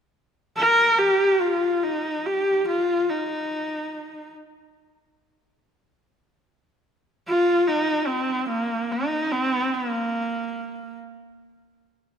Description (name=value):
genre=mongolian traditional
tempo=free time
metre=none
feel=none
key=Bb zhi mode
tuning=A4 = 439 Hz
part: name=clear horsehead fiddle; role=melody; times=0.6-11.0 s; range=Bb3 to Bb4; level=-21 LUFS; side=equal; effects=none
room=moderate concert hall reverb, RT60 1.9 s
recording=none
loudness=-20 LUFS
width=side -8 dB against mid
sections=0.0-12.2 A section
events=none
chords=none